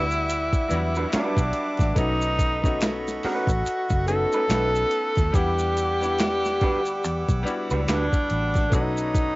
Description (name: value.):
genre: R&B, neo-soul.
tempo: 71 BPM.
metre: 4/4.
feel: swing 60% on 16ths.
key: E dorian.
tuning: A4 = 440 Hz.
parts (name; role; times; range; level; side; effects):
breathy tenor saxophone; melody; 0.0-9.4 s; D4 to A4; -25 LUFS; equal; cassette tape.
electric guitar through a small old amp; second line; 0.0-8.1 s; G3 to B4; -30 LUFS; right 2 dB; none.
bright concert grand piano; accompaniment; 0.0-9.4 s; F#3 to F#5; -31 LUFS; left 2 dB; none.
accordion; sustained chords; 0.0-9.4 s; G3 to E6; -35 LUFS; right 1 dB; none.
vintage muted fingered electric bass; bass; 0.0-9.4 s; F#1 to E2; -28 LUFS; equal; none.
dusty soul sampler-style drum kit; drums; 0.1-9.4 s; finger snaps, hi-hat, kick drum, snare drum; -24 LUFS; equal; cassette tape.
maracas and finger snaps; percussion; 0.1-9.4 s; none; -36 LUFS; equal; none.
room: light reverb, small room ambience.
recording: home recording on cassette, nothing above 7.7 kHz.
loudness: -21 LUFS.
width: side -21 dB against mid.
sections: 0.0-9.4 A section.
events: none.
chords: 0.0 Em9; 2.0 B9; 4.5 B7; 5.3 Em9; 8.7 B9.